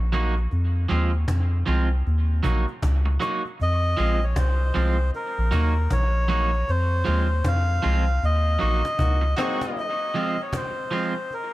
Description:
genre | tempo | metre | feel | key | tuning
dub reggae | 78 BPM | 4/4 | swing 61% on 16ths | unclear | A4 = 439 Hz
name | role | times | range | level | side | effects
soft dub sub bass | bass | 0.0-9.3 s | Bb1 to F2 | -21 LUFS | equal | none
electric guitar at the edge of break-up | accompaniment | 0.1-11.1 s | F3 to Gb4 | -28 LUFS | right 3 dB | dub echo
cajon | drums | 0.1-11.4 s | none | -32 LUFS | equal | none
melodica | melody | 3.6-11.5 s | Bb4 to F5 | -27 LUFS | left 1 dB | dub echo
warm horn section | second line | 9.0-9.9 s | Ab3 to Gb4 | -31 LUFS | left 3 dB | dub echo
room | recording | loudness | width
small room ambience | none | -21 LUFS | side -17 dB against mid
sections
0.0-9.8 A section; 9.8-11.5 B section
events
band accent 6.7-9.8; drum fill 9.0-9.8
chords
0.0 Ebm; 0.5 Fm; 2.1 Ebm; 3.6 Fm; 5.1 Ebm; 6.7 Fm; 8.2 Ebm; 9.8 Fm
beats
| 0.51 1.28 2.05 2.83 | 3.60 4.37 5.14 5.91 | 6.68 7.45 8.22 8.99 | 9.76 10.53 11.30

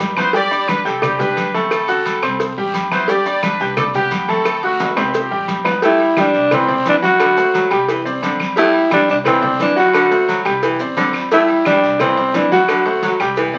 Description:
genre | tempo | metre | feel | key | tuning
latin, salsa | 175 BPM | 4/4 | straight | G major | A4 = 441 Hz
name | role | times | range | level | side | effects
bright baby grand piano | accompaniment | 0.0-13.6 s | F#3 to G6 | -22 LUFS | equal | none
upright bass | bass | 0.0-13.6 s | G1 to D2 | -38 LUFS | equal | none
congas | percussion | 0.0-13.6 s | none | -29 LUFS | equal | none
cowbell | percussion | 0.0-13.5 s | none | -27 LUFS | equal | none
guiro | percussion | 0.0-13.6 s | none | -35 LUFS | equal | none
maracas | percussion | 0.0-13.5 s | none | -42 LUFS | equal | none
bright horn section | melody | 0.2-5.6 s | A3 to D5 | -23 LUFS | equal | none
agogo bells and timbales | percussion | 0.2-13.4 s | none | -26 LUFS | equal | none
claves | percussion | 0.2-13.4 s | none | -29 LUFS | equal | none
raspy tenor saxophone | melody | 5.8-13.2 s | C4 to F#4 | -16 LUFS | equal | none
clear baritone saxophone | second line | 5.8-13.6 s | D3 to A3 | -24 LUFS | equal | none
room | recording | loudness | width
wet studio ambience, RT60 0.5 s | very old 78 rpm record, vinyl crackle | -16 LUFS | mono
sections
0.0-5.8 A section; 5.8-13.6 B section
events
drum fill 4.8-5.8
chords
0.3 G5; 1.0 Csus2; 1.7 D7; 2.4 C; 3.1 G; 3.8 Csus2; 4.5 D7; 5.1 C5; 5.8 Gsus2; 6.5 Cadd9; 7.2 D7; 7.9 Cadd9; 8.6 Gsus2; 9.3 Cadd9; 9.9 D7; 10.6 Cadd9; 11.3 Gsus2; 12.0 Cadd9; 12.7 D7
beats
0.00 | 0.34 0.68 1.03 1.37 | 1.71 2.06 2.40 2.74 | 3.09 3.43 3.77 4.11 | 4.46 4.80 5.14 5.49 | 5.83 6.17 6.51 6.86 | 7.20 7.54 7.89 8.23 | 8.57 8.91 9.26 9.60 | 9.94 10.29 10.63 10.97 | 11.31 11.66 12.00 12.34 | 12.69 13.03 13.37

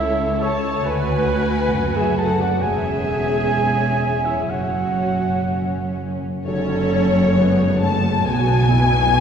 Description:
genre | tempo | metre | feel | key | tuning
cinematic, emotional film score for orchestra | 60-69 BPM | 4/4 | rubato | F# minor | A4 = 440 Hz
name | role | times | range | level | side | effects
warm studio violin section | melody | 0.0-9.2 s | C#4 to A5 | -25 LUFS | left 5 dB | none
dark cor anglais | second line | 0.0-6.0 s | B4 to A5 | -24 LUFS | right 2 dB | none
warm symphonic violin section | second line | 0.0-9.2 s | C#5 to A5 | -29 LUFS | left 2 dB | none
rich symphonic viola section | accompaniment | 0.0-9.2 s | G#3 to C#5 | -25 LUFS | right 1 dB | none
rich studio cello section | bass | 0.0-9.2 s | C#2 to B2 | -22 LUFS | right 1 dB | none
warm symphonic double bass section | bass | 0.0-9.2 s | E1 to D2 | -24 LUFS | right 1 dB | none
tam-tam | percussion | 6.5-9.2 s | none | -30 LUFS | left 1 dB | none
room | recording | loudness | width
wet cathedral reverb, RT60 3.9 s | heard from further back in the room | -17 LUFS | side -7 dB against mid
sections
0.0-6.5 A section; 6.5-9.2 B section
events
band accent 6.5-7.4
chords
0.0 A/C#; 0.9 D; 2.6 E6; 4.5 F#5; 6.5 F#m; 8.3 B5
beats
0.87 1.74 | 2.62 3.54 4.50 5.48 | 6.45 7.37 8.25 9.14

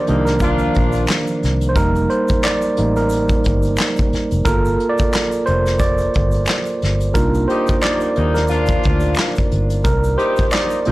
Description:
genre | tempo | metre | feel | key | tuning
R&B, neo-soul | 89 BPM | 4/4 | swing 56% on 16ths | C dorian | A4 = 440 Hz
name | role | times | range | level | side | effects
tine electric piano | accompaniment | 0.0-10.9 s | Eb3 to D5 | -18 LUFS | right 2 dB | none
mellow horn section | stabs | 0.1-1.0, 7.5-10.9 s | G3 to G4 | -24 LUFS | left 3 dB | tape echo
vintage muted fingered electric bass | bass | 0.1-10.9 s | F1 to Eb2 | -19 LUFS | equal | transformer saturation
vintage brush drum kit | drums | 0.1-10.9 s | handclaps, hi-hat, kick drum, snare drum | -20 LUFS | equal | none
egg shaker and finger snaps | percussion | 0.3-10.8 s | none | -33 LUFS | left 3 dB | none
room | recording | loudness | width
little or no reverb | blown-out, overdriven recording, overdrive, lossy compression artefacts | -15 LUFS | side -18 dB against mid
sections
0.0-10.9 A section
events
tine electric piano solo 0.0-10.9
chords
0.0 Cm11; 1.8 F9sus4; 4.5 Gm9; 7.2 Cm11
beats
0.41 1.09 | 1.76 2.44 3.11 3.78 | 4.46 5.13 5.81 6.48 | 7.16 7.83 8.50 9.18 | 9.85 10.53

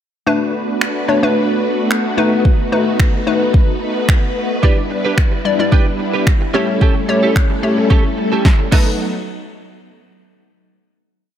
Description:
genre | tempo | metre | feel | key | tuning
dance-pop | 110 BPM | 4/4 | straight | B minor | A4 = 440 Hz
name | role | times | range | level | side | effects
hollow square pluck | accompaniment | 0.3-9.0 s | G3 to D5 | -18 LUFS | left 3 dB | chorus, sidechain pumping
string machine, violas | sustained chords | 0.3-9.0 s | F#3 to B4 | -19 LUFS | equal | ensemble chorus, sidechain pumping
deep house drum kit | drums | 0.8-8.9 s | crash cymbal, finger snaps, kick drum, snare drum | -14 LUFS | equal | none
direct-recorded clean electric guitar | riff | 4.6-8.9 s | B3 to B4 | -22 LUFS | right 6 dB | ensemble chorus
room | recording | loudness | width
moderate plate reverb, RT60 2.2 s | dreamy mix soaked in reverb | -13 LUFS | side -10 dB against mid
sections
0.3-9.0 verse; 9.0-11.2 final hit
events
drum fill 8.4-9.0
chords
0.3 Bm7; 2.2 B7; 4.6 Em7; 6.5 A7; 8.7 B7; 9.0 N.C.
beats
| 0.27 0.81 1.36 1.91 | 2.45 3.00 3.54 4.09 | 4.63 5.18 5.72 6.27 | 6.81 7.36 7.91 8.45

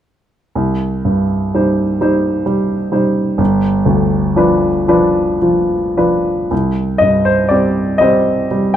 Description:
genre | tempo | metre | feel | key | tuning
classical, romantic nocturne for solo piano | 35-44 BPM (dotted quarters) | 12/8 | rubato | C minor | A4 = 440 Hz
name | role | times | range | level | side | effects
clear baby grand piano | solo | 0.6-8.8 s | G1 to Eb5 | -12 LUFS | equal | none
room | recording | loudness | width
moderate large studio reverb, RT60 1.1 s | dark, warm production | -12 LUFS | side -10 dB against mid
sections
0.6-6.5 A section; 6.5-8.8 B section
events
none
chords
0.6 Cm; 3.4 G7; 6.5 Cm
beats
| 0.56 2.01 3.39 4.89 | 6.51 8.01

